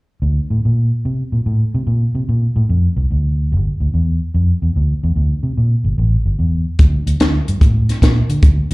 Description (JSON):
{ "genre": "electric blues shuffle", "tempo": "146 BPM", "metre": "4/4", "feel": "swing 67% on 8ths", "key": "D minor", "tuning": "A4 = 440 Hz", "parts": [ { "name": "vintage muted fingered electric bass", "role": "bass", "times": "0.2-8.7 s", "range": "G1 to D3", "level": "-15 LUFS", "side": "equal", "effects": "none" }, { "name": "compact cocktail drum kit", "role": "drums", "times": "6.8-8.7 s", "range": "hi-hat, kick drum, snare drum", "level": "-12 LUFS", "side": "equal", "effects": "none" } ], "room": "little or no reverb", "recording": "live gig heard through the venue's PA, club reverb", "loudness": "-14 LUFS", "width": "side -23 dB against mid", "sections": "0.2-6.8 A section; 6.8-8.7 B section", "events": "none", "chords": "none" }